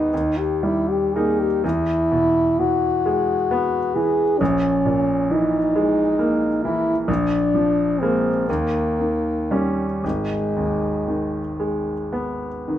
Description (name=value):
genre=classical, romantic duo for French horn and grand piano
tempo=36-45 BPM (dotted quarters)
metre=6/8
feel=rubato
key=G# minor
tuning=A4 = 439 Hz
part: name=warm French horn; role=melody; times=0.0-11.5 s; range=G#3 to G#4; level=-20 LUFS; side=left 1 dB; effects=none
part: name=bright grand piano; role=accompaniment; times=0.0-12.8 s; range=G#1 to D#4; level=-22 LUFS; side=equal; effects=none
room=light reverb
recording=close, detailed microphones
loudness=-18 LUFS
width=side -11 dB against mid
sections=0.0-12.8 A section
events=none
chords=0.1 D#; 1.6 E; 4.4 A#m7b5; 7.1 A#7; 8.5 D#7; 10.0 G#m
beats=0.12 | 1.64 3.04 | 4.40 5.74 | 7.08 8.47 | 10.03 11.59